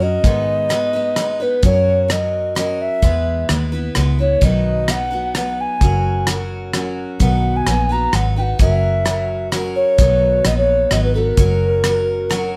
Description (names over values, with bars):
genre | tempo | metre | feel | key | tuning
honky-tonk and classic country | 129 BPM | 3/4 | straight | B major | A4 = 440 Hz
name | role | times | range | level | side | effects
alto ocarina | melody | 0.0-12.5 s | A#4 to A#5 | -21 LUFS | equal | none
picked steel-string acoustic guitar | accompaniment | 0.0-12.6 s | G#2 to B4 | -27 LUFS | equal | none
vintage muted fingered electric bass | bass | 0.0-12.6 s | F#1 to G#2 | -22 LUFS | equal | none
cloth-damped thuddy drum kit | drums | 0.2-12.4 s | hi-hat, kick drum, rim click | -20 LUFS | equal | none
room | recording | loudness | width
light reverb | band playing live in one room | -17 LUFS | mono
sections
0.0-12.6 A section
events
none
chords
0.2 G#m; 1.6 F#; 3.0 E; 4.4 B; 5.8 F#; 7.2 B; 8.6 F#; 10.0 B; 11.4 F#